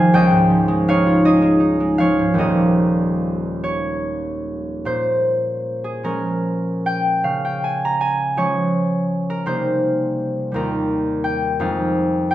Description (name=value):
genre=classical, solo harp piece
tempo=47-56 BPM (dotted quarters)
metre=6/8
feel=rubato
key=Bb dorian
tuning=A4 = 440 Hz
part: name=concert harp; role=solo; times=0.0-12.3 s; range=Eb1 to Bb5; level=-16 LUFS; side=equal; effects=none
room=moderate recital hall reverb, RT60 1.3 s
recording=minimal, uncompressed stereo recording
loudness=-17 LUFS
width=side -13 dB against mid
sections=0.0-4.9 A section; 4.9-12.3 B section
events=none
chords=0.1 Dbadd9; 2.4 Eb9; 4.9 Bbm7; 7.3 Db; 9.5 Cm7; 10.5 Ebadd9; 11.6 Fm7